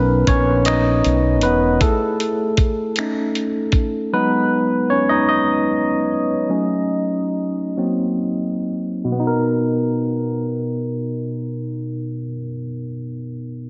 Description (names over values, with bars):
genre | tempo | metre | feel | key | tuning
slow six-eight R&B | 42-52 BPM (dotted quarters) | 6/8 | straight | B major | A4 = 440 Hz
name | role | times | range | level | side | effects
barky tine electric piano | accompaniment | 0.0-13.7 s | B2 to D#5 | -21 LUFS | equal | none
mellow fretless electric bass | bass | 0.0-1.8 s | E1 to B1 | -21 LUFS | equal | none
dusty soul sampler-style drum kit | drums | 0.3-3.9 s | finger snaps, hi-hat, kick drum | -22 LUFS | equal | none
room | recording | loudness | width
wet lush hall reverb, RT60 2.3 s | big arena sound, low-pass filter, nothing above 7.8 kHz | -20 LUFS | mono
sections
0.0-9.1 A section; 9.1-12.0 B section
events
tine electric piano solo 0.0-9.1; filter sweep 0.0-9.1; slowing down 4.1-9.1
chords
0.0 Bmaj7; 1.8 Eadd11/A; 3.0 A; 4.1 B69/F#; 6.5 D#m7b5; 7.8 F#; 9.1 Bmaj7